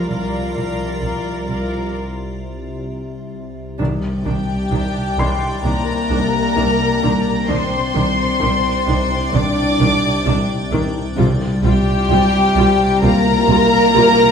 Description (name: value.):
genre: cinematic.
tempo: 65 BPM.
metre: 4/4.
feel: straight.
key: unclear.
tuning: A4 = 439 Hz.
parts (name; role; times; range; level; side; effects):
warm studio violin section; melody; 0.0-14.3 s; F5 to D6; -21 LUFS; left 3 dB; none.
warm chamber violin section; second line; 0.0-14.3 s; G4 to D5; -21 LUFS; equal; none.
warm studio viola section; accompaniment; 0.0-14.0 s; Eb3 to Bb4; -24 LUFS; right 1 dB; none.
icy glass pad; sustained chords; 0.0-14.3 s; D4 to Bb5; -29 LUFS; left 1 dB; chorus, built-in reverb.
mellow French horn section; sustained chords; 0.0-14.3 s; F3 to Bb4; -21 LUFS; left 2 dB; none.
dark studio cello section; bass; 0.0-14.0 s; C3 to G3; -29 LUFS; right 3 dB; none.
organ-like drone; drone; 0.0-14.3 s; C2; -25 LUFS; left 1 dB; ensemble chorus, built-in reverb.
felt-muted upright piano; texture; 0.0-11.2 s; Bb5 to C7; -32 LUFS; left 2 dB; none.
dark studio double bass section; bass; 0.1-14.0 s; C2; -22 LUFS; right 2 dB; none.
timpani; percussion; 3.8-5.1, 11.2-12.5 s; C3; -23 LUFS; equal; none.
room: wet recital hall reverb, RT60 1.3 s.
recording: heard from further back in the room.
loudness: -14 LUFS.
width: side -7 dB against mid.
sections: 0.0-3.8 A section; 3.8-14.3 A section.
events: break 1.9-3.8.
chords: 0.0 Gm7/C; 3.8 Cmadd9; 11.2 Gm7/C.